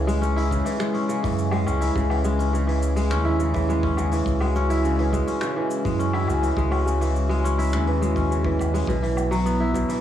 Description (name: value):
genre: folktronica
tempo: 104 BPM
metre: 4/4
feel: straight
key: C# minor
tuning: A4 = 441 Hz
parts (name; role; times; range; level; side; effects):
- pedal harmonium; sustained chords; 0.0-10.0 s; F#3 to G#4; -29 LUFS; equal; cassette tape
- kora; arpeggios; 0.0-10.0 s; B2 to E4; -24 LUFS; equal; cassette tape, analog delay
- warm sub bass; bass; 0.0-9.8 s; B1 to F#2; -23 LUFS; equal; none
- soft brush drum kit; drums; 0.1-10.0 s; cabasa, finger snaps, hi-hat, woodblock; -37 LUFS; left 1 dB; cassette tape
- kick drum; drums; 0.5-9.9 s; none; -30 LUFS; equal; cassette tape
room: light reverb, studio reverb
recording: home recording on cassette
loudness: -20 LUFS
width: side -10 dB against mid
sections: 0.0-10.0 A section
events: none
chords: 0.0 C#m; 8.9 Bsus4